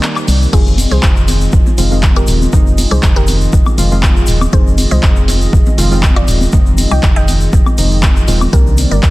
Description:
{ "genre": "deep house", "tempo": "120 BPM", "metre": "4/4", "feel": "swing 53% on 16ths", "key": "F dorian", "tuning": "A4 = 439 Hz", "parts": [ { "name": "hollow soft pad", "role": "sustained chords", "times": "0.0-9.1 s", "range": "Eb3 to Eb5", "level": "-23 LUFS", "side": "equal", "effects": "chorus, sidechain pumping" }, { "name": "warm analog keys", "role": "stabs", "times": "0.0-9.1 s", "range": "Eb3 to F4", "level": "-20 LUFS", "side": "equal", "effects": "chorus, sidechain pumping, tape echo" }, { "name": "punchy analog drum machine", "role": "drums", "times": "0.0-9.1 s", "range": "crash cymbal, handclaps, hi-hat, woodblock", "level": "-20 LUFS", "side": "equal", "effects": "small room reverb" }, { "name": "tube shaker", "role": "percussion", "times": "0.0-9.1 s", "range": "none", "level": "-27 LUFS", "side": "left 4 dB", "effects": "none" }, { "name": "ethereal airy pad", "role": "texture", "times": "0.1-0.5 s", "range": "none", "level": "barely audible", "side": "none", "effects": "none" }, { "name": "organ-like FM bass", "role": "bass", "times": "0.3-9.1 s", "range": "Eb1 to C2", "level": "-14 LUFS", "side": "equal", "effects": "sidechain pumping" }, { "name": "congas", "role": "percussion", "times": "0.3-9.0 s", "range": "none", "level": "-24 LUFS", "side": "left 1 dB", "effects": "sidechain pumping on perc" }, { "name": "mallet-like synth pluck", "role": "melody", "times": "0.5-9.1 s", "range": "F4 to G5", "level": "-23 LUFS", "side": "equal", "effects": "chorus, tape echo" }, { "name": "electronic kick drum", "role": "drums", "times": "0.5-9.1 s", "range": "none", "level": "-11 LUFS", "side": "equal", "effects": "overdrive, small room reverb" } ], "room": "digital ambience", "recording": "dense, heavily limited modern master", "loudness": "-9 LUFS", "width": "side -19 dB against mid", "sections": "0.5-9.1 A section", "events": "break 0.0-0.5; drop 0.5-9.1", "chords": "0.0 Cm9; 0.5 Fm7; 8.5 Cm9" }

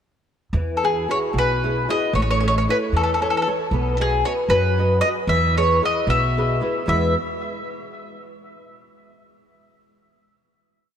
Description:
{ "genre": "italian folk, Italian serenade", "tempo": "76 BPM (dotted quarters)", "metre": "6/8", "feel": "straight", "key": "E major", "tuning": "A4 = 441 Hz", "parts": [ { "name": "flamenco guitar", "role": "accompaniment", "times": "0.5-7.1 s", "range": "E2 to D#5", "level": "-24 LUFS", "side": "equal", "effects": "ensemble chorus" }, { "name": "upright bass", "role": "bass", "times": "0.5-7.1 s", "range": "A1 to F#2", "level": "-23 LUFS", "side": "right 1 dB", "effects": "none" }, { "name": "bowl-back mandolin", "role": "melody", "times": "0.8-7.1 s", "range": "G#4 to E5", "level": "-21 LUFS", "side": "left 2 dB", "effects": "diffuse ambient delay" } ], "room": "moderate plate reverb, RT60 3.7 s", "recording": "dreamy mix soaked in reverb", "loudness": "-18 LUFS", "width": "side -8 dB against mid", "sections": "0.5-6.9 A section; 6.9-8.4 final chord", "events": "none", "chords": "0.5 Eadd9; 2.1 A; 3.7 B; 5.3 E" }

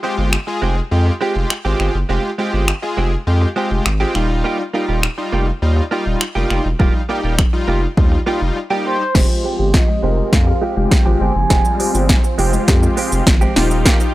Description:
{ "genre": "dance-pop", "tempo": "102 BPM", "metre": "4/4", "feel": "straight", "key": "F minor", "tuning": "A4 = 440 Hz", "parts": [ { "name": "big bright polysynth", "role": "accompaniment", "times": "0.0-14.1 s", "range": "G3 to Bb4", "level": "-22 LUFS", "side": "left 1 dB", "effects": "chorus, sidechain pumping, low-pass filter" }, { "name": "direct-recorded clean electric guitar", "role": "riff", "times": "0.0-14.0 s", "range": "Ab3 to G4", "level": "-23 LUFS", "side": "right 5 dB", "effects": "analog chorus, low-pass filter" }, { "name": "saturated sub bass", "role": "bass", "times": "0.2-13.8 s", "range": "Eb1 to F2", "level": "-18 LUFS", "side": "equal", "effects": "sidechain pumping" }, { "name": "deep house drum kit", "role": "drums", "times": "0.3-14.1 s", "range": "crash cymbal, finger snaps, hi-hat, kick drum, shaker, snare drum", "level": "-15 LUFS", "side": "equal", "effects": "none" }, { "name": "mellow horn-like synth lead", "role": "melody", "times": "8.9-12.4 s", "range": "C5 to Ab5", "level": "-23 LUFS", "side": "right 1 dB", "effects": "chorus, phaser, low-pass filter, tape echo" }, { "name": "phased string machine", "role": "sustained chords", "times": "9.2-14.1 s", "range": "F3 to G4", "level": "-26 LUFS", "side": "equal", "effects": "ensemble chorus, phaser, sidechain pumping, low-pass filter" }, { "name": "mallet-like synth pluck", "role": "arpeggios", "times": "9.2-14.0 s", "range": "Ab3 to G4", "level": "-26 LUFS", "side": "left 3 dB", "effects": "chorus, sidechain pumping, low-pass filter, tape echo" }, { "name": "egg shaker", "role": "percussion", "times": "13.9-14.1 s", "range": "none", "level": "-36 LUFS", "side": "left 6 dB", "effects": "none" } ], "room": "little or no reverb", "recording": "dry, gritty hardware recording, transformer saturation", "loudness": "-14 LUFS", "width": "side -16 dB against mid", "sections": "0.0-9.2 A section; 9.2-14.1 B section", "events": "break 8.6-9.2; build-up 9.2-14.1; drum fill 9.2-14.1; filter sweep 9.2-14.1", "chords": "0.0 Fmadd9; 4.2 Ebadd9; 9.2 Fmadd9; 13.6 Ebadd9" }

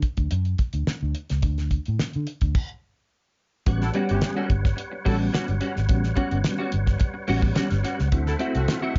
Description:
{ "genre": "funk", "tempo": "108 BPM", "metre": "4/4", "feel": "straight", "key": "A mixolydian", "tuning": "A4 = 440 Hz", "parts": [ { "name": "damped 70s drum kit", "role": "drums", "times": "0.0-9.0 s", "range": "crash cymbal, hi-hat, kick drum, snare drum", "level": "-27 LUFS", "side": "equal", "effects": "none" }, { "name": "vintage muted fingered electric bass", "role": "bass", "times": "0.2-9.0 s", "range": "G1 to D3", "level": "-27 LUFS", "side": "equal", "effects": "none" }, { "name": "percussive tonewheel organ", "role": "sustained chords", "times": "3.7-9.0 s", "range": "G3 to F#5", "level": "-38 LUFS", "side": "equal", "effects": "fast rotary speaker, overdrive, chorus vibrato" }, { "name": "reed electric piano", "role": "stabs", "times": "3.7-9.0 s", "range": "G3 to G4", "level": "-32 LUFS", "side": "equal", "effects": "overdrive, fast tremolo, tape echo" }, { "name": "warm horn section", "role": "second line", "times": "3.8-8.9 s", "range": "A3 to A4", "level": "-35 LUFS", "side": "equal", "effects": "none" }, { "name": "clean electric guitar", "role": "accompaniment", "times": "3.9-9.0 s", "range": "G3 to F#4", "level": "-31 LUFS", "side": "equal", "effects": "ensemble chorus" } ], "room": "light reverb", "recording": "dark, warm production, nothing above 7.5 kHz", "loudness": "-24 LUFS", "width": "mono", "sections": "0.0-3.7 A section; 3.7-9.0 B section", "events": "stop 2.6-3.7", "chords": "0.0 N.C.; 3.7 A13; 8.1 D9" }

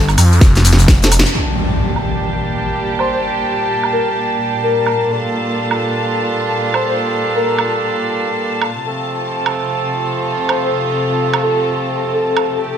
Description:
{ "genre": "bass house", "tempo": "128 BPM", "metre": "4/4", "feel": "swing 60% on 16ths", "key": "G minor", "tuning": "A4 = 440 Hz", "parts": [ { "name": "breathy flute-like synth lead", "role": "melody", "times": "0.0, 3.0-7.5, 10.5-12.6 s", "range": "A4 to C5", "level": "-20 LUFS", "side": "left 2 dB", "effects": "wide subtle chorus, ping-pong delay" }, { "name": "phased detuned saw bass", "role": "bass", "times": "0.0-1.2 s", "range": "F1 to F2", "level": "-11 LUFS", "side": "equal", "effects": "phaser, sidechain pumping" }, { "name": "garage drum kit", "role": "drums", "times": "0.1-12.5 s", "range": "hi-hat, shaker, snare drum, woodblock", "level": "-18 LUFS", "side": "right 2 dB", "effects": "low-pass filter on hats, low-pass filter on perc, low-pass filter on snare" }, { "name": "open jazz drum kit", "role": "drums", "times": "0.1-1.4 s", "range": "hi-hat, snare drum", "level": "-25 LUFS", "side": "left 3 dB", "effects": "high-pass filter on hats, high-pass filter on snare, high-pass filter on room" }, { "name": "electronic kick drum", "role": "drums", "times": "0.4-1.0 s", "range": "none", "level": "-9 LUFS", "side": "equal", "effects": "none" }, { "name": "mellow horn section", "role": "stabs", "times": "1.0-12.8 s", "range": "F3 to A5", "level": "-19 LUFS", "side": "right 2 dB", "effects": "vintage 12-bit sampler grit, sidechain pumping, ping-pong delay" }, { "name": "dark studio string section", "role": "sustained chords", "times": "1.4-12.8 s", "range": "Bb2 to A5", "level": "-21 LUFS", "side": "equal", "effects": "sidechain pumping" }, { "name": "impact", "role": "sound effects", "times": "1.4-3.2 s", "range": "none", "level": "-20 LUFS", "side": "equal", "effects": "none" } ], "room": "moderate lush hall reverb, RT60 1.6 s", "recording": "none", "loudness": "-14 LUFS", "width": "side -9 dB against mid", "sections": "0.0-1.4 A section; 1.4-12.8 B section", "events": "filter sweep on detuned saw bass 0.0-1.4; drum fill 0.4-1.4; band accent 1.2; impact 1.4-3.2", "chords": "0.0 N.C.; 1.4 Gmadd9; 8.8 F" }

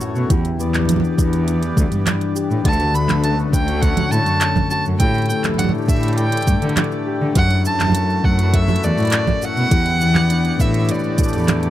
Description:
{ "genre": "folktronica", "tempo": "102 BPM", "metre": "4/4", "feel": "straight", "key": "unclear", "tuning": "A4 = 441 Hz", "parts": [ { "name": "hand-pumped harmonium", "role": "sustained chords", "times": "0.0-11.7 s", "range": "D3 to E5", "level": "-28 LUFS", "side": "left 2 dB", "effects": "none" }, { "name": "concert harp", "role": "arpeggios", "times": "0.0-11.7 s", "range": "F#2 to G4", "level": "-22 LUFS", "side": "left 4 dB", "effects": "tape echo" }, { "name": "organic electronic drum kit", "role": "drums", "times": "0.0-11.7 s", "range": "congas, handclaps, hi-hat, shaker", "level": "-22 LUFS", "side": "right 5 dB", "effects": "studio ambience" }, { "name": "dark cello", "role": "bass", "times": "0.2-11.7 s", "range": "D2 to D3", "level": "-20 LUFS", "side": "equal", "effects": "none" }, { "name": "electronic kick drum", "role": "drums", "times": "0.3-11.3 s", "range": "none", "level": "-18 LUFS", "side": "right 1 dB", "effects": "studio ambience" }, { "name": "warm violin", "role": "melody", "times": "2.7-11.7 s", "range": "D5 to B5", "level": "-22 LUFS", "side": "right 1 dB", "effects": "tape echo" } ], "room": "little or no reverb", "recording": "dry, close 1970s-style studio recording", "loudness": "-15 LUFS", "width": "side -13 dB against mid", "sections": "0.0-11.7 A section", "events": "none", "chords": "0.3 Em7; 2.7 Dmaj7; 5.0 A7sus4; 7.4 F#m7; 9.7 Em7" }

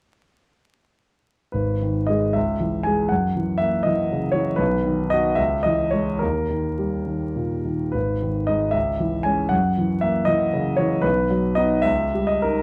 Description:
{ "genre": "classical, romantic character piece for solo piano", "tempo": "61-82 BPM (dotted quarters)", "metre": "6/8", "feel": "rubato", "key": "G# minor", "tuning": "A4 = 441 Hz", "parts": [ { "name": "warm grand piano", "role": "solo", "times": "1.5-12.6 s", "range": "G#1 to G#5", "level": "-22 LUFS", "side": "equal", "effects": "none" } ], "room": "light reverb", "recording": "vinyl crackle", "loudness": "-22 LUFS", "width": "mono", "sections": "1.5-12.6 A section", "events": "none", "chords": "1.5 G#m; 2.4 C#m; 3.1 F#7; 4.6 B; 5.4 C#m; 6.2 D#; 7.9 G#m; 8.7 C#m; 9.5 F#7; 11.0 B; 11.9 D#7/C#" }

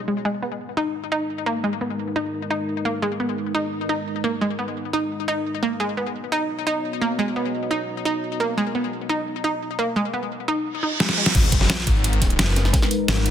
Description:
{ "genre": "dark technical drum and bass", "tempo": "173 BPM", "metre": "4/4", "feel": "straight", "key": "G# minor", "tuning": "A4 = 438 Hz", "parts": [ { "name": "dark analog pad", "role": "sustained chords", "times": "0.0-13.3 s", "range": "G#3 to D#5", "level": "-30 LUFS", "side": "equal", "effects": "chorus, sidechain pumping" }, { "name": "analog pluck", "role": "arpeggios", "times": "0.1-11.3 s", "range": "G#3 to D#4", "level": "-23 LUFS", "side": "right 1 dB", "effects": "chorus, sidechain pumping, ping-pong delay" }, { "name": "reverse cymbal and impact", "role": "sound effects", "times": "10.8-12.7 s", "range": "none", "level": "-27 LUFS", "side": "right 1 dB", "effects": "none" }, { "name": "dubstep drum kit", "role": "drums", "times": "11.0-13.3 s", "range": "crash cymbal, hi-hat, snare drum", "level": "-22 LUFS", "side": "equal", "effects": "none" }, { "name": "wide detuned saw bass", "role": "bass", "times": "11.3-13.3 s", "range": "F#1 to G#1", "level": "-21 LUFS", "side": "equal", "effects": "chorus, sidechain pumping" }, { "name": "crunchy breakbeat drum kit", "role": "drums", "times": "11.3-13.3 s", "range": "hi-hat, snare drum", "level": "-32 LUFS", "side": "equal", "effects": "none" }, { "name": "electronic kick drum", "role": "drums", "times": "11.3-12.8 s", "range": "none", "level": "-20 LUFS", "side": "equal", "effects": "overdrive" } ], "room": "light reverb", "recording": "dense, heavily limited modern master", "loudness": "-21 LUFS", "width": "side -9 dB against mid", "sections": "0.0-11.3 A section; 11.3-13.3 B section", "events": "reverse cymbal 10.8-11.3; drum fill 11.0-11.3; drop 11.3-13.3; impact 11.3-12.7", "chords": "0.2 G#m; 5.8 B; 11.3 G#m" }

